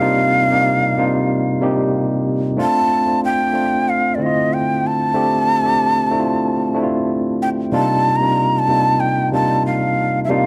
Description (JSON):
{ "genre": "soul", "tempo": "93 BPM", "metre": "4/4", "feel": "swing 54% on 16ths", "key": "C dorian", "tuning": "A4 = 440 Hz", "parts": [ { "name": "breathy shakuhachi", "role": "melody", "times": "0.0-10.5 s", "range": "D5 to Bb5", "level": "-20 LUFS", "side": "equal", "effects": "none" }, { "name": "tine electric piano", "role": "accompaniment", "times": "0.0-10.5 s", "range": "C3 to G4", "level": "-20 LUFS", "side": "equal", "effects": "overdrive" } ], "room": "light reverb, small room ambience", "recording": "dark, warm production", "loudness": "-17 LUFS", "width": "mono", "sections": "0.0-10.5 A section", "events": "none", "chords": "0.0 Cm11; 2.6 Dm7; 7.7 Cm11", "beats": "| 0.02 0.66 1.30 1.95 | 2.59 3.23 3.88 4.52 | 5.16 5.80 6.45 7.09 | 7.73 8.38 9.02 9.66 | 10.30" }